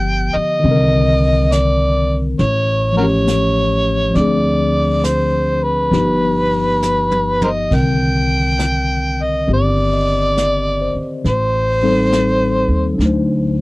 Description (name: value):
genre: jazz ballad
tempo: 68 BPM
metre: 4/4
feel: swing 66% on 8ths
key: C minor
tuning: A4 = 438 Hz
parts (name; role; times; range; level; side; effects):
- overdriven harmonica; melody; 0.0-13.0 s; F#4 to G5; -17 LUFS; equal; none
- barky tine electric piano; accompaniment; 0.0-13.6 s; D3 to Eb5; -18 LUFS; left 2 dB; medium stereo tremolo
- upright bass; bass; 0.0-13.6 s; G1 to Eb2; -18 LUFS; equal; none
- vintage brush drum kit; drums; 0.7-13.6 s; brushed snare drum, hi-hat, kick drum, ride cymbal, snare drum, toms; -26 LUFS; equal; none
room: little or no reverb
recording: dry, close 1970s-style studio recording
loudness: -13 LUFS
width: side -21 dB against mid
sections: 0.0-7.7 A section; 7.7-13.6 A section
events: drum fill 6.8-7.7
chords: 0.0 G7; 0.6 Cm9; 2.4 A7b13; 4.1 Dm7b5; 5.9 G7b13; 7.7 Cm9; 11.2 Am7b5; 13.0 D7b9